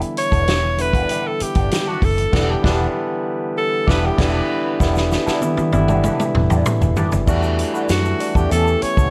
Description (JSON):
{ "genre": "lush 1970s-style soul", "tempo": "97 BPM", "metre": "4/4", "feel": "straight", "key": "E dorian", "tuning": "A4 = 440 Hz", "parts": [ { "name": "barky tine electric piano", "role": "accompaniment", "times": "0.0-9.1 s", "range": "D3 to G4", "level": "-25 LUFS", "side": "equal", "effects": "none" }, { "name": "electric guitar through a small old amp", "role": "riff", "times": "0.0-9.1 s", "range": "E3 to B4", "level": "-31 LUFS", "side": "equal", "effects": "wah" }, { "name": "vintage drum kit", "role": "drums", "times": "0.0-9.1 s", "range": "crash cymbal, hi-hat, kick drum, snare drum, toms", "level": "-22 LUFS", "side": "equal", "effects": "none" }, { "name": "edgy alto saxophone", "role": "melody", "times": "0.2-9.1 s", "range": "F#4 to C#5", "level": "-24 LUFS", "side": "equal", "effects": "none" }, { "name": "vintage muted fingered electric bass", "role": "bass", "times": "0.3-9.1 s", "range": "E1 to F#2", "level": "-23 LUFS", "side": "equal", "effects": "none" }, { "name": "egg shaker", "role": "percussion", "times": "4.8-9.1 s", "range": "none", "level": "-42 LUFS", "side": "equal", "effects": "none" } ], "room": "light reverb, small room ambience", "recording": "none", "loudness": "-18 LUFS", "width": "mono", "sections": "0.0-4.8 A section; 4.8-7.3 B section; 7.3-9.1 C section", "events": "alto saxophone solo 0.0-4.8; band accent 2.3-4.8; drum fill 4.8-7.3", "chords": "0.0 Em7; 8.5 A9" }